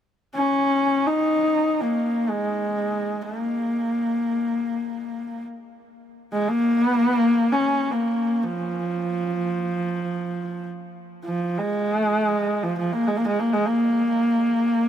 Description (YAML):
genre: mongolian traditional, Mongolian folk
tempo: free time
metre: none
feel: none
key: Bb yu mode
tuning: A4 = 440 Hz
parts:
  - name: rich horsehead fiddle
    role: solo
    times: 0.4-14.9 s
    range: F3 to Eb4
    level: -21 LUFS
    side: equal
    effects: none
room: moderate huge ambient reverb, RT60 6.4 s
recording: none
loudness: -21 LUFS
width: side -9 dB against mid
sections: 0.0-14.9 A section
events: none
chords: none